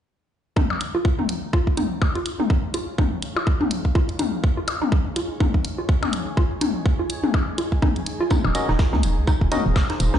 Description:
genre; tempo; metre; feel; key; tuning
minimal techno; 124 BPM; 4/4; swing 57% on 16ths; unclear; A4 = 440 Hz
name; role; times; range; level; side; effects
hollow square pluck; riff; 0.6-10.2 s; Eb4 to F4; -28 LUFS; right 2 dB; lush chorus, sidechain pumping, dub echo
electronic kick drum; drums; 0.6-9.9 s; none; -19 LUFS; equal; overdrive
electronic toms and percussion blips; percussion; 0.6-10.2 s; none; -26 LUFS; left 6 dB; digital delay
granular cloud pad; texture; 2.3-10.2 s; Eb4 to Ab5; -36 LUFS; right 3 dB; built-in reverb, sidechain pumping
electronic hi-hat; drums; 0.8-10.1 s; none; -33 LUFS; right 2 dB; overdrive
vintage brush drum kit; drums; 8.3-10.2 s; hi-hat, snare drum, tambourine; -37 LUFS; equal; sidechain pumping on hats, high-pass filter on hats, high-pass filter on snare, sidechain pumping on perc, high-pass filter on perc, high-pass filter on room
hollow knocking FM bass; bass; 8.4-10.2 s; Eb1 to Db2; -21 LUFS; equal; tube saturation, sidechain pumping
percussive organ stab; stabs; 8.5-9.6 s; Db4 to Eb5; -28 LUFS; left 1 dB; chorus, digital delay
room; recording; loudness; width
light reverb, studio reverb; played on a big sound system in a bare room, large studio reverb, nothing above 10.7 kHz; -20 LUFS; side -10 dB against mid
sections
0.6-10.2 A section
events
fade-in on ambient pad 0.6-10.2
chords
0.6 Eb7(no3)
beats
| 0.56 1.05 1.53 2.02 | 2.50 2.98 3.47 3.95 | 4.44 4.92 5.40 5.89 | 6.37 6.86 7.34 7.82 | 8.31 8.79 9.28 9.76

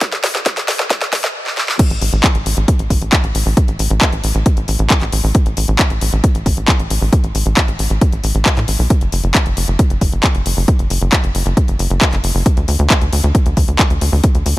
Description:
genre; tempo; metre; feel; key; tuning
uplifting trance; 135 BPM; 4/4; straight; unclear; A4 = 440 Hz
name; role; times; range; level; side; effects
electronic kick drum; drums; 0.0-14.3 s; none; -14 LUFS; equal; overdrive
house drum kit; drums; 0.0-14.5 s; crash cymbal, handclaps, hi-hat, snare drum; -18 LUFS; left 1 dB; overdrive, high-pass filter on snare, high-pass filter on hats, high-pass filter on cymbals
tight sequencer bass; bass; 0.1-14.5 s; F#1 to A2; -16 LUFS; equal; sidechain pumping, high-pass filter
room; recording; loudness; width
little or no reverb; high-pass filter; -12 LUFS; side -17 dB against mid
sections
0.0-1.8 A section; 1.8-14.6 B section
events
build-up 0.0-1.8; drum fill 0.0-1.3, 1.5-1.8; drop 1.8-14.6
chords
none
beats
| 0.01 0.46 0.90 1.35 | 1.79 2.24 2.68 3.12 | 3.57 4.01 4.46 4.90 | 5.35 5.79 6.24 6.68 | 7.12 7.57 8.01 8.46 | 8.90 9.35 9.79 10.24 | 10.68 11.12 11.57 12.01 | 12.46 12.90 13.35 13.79 | 14.24

